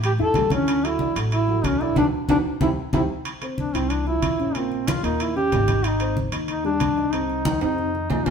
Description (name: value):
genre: Afro-Cuban jazz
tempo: 186 BPM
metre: 4/4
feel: straight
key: unclear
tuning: A4 = 440 Hz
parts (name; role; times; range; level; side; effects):
- dark upright piano; accompaniment; 0.0-8.3 s; Bb2 to E5; -28 LUFS; left 2 dB; none
- upright bass; bass; 0.0-8.3 s; Ab1 to A2; -28 LUFS; equal; none
- congas; percussion; 0.0-8.3 s; none; -27 LUFS; equal; none
- timbales; percussion; 0.0-8.3 s; none; -30 LUFS; right 4 dB; none
- warm duduk; melody; 0.1-8.3 s; C4 to A4; -23 LUFS; equal; none
room: wet stone room reverb, RT60 1.1 s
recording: band playing live in one room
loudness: -20 LUFS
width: side -6 dB against mid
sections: 0.0-3.3 A section; 3.3-8.3 B section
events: band accent 2.0-3.3; duduk solo 3.3-8.3; drum fill 7.5-8.3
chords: 0.0 A7; 0.7 Dmaj9; 2.0 Bm; 2.6 C; 3.3 F5; 4.6 Bbmadd9; 5.2 Eb7; 5.8 Abmaj7; 7.1 Cmadd11; 7.8 F5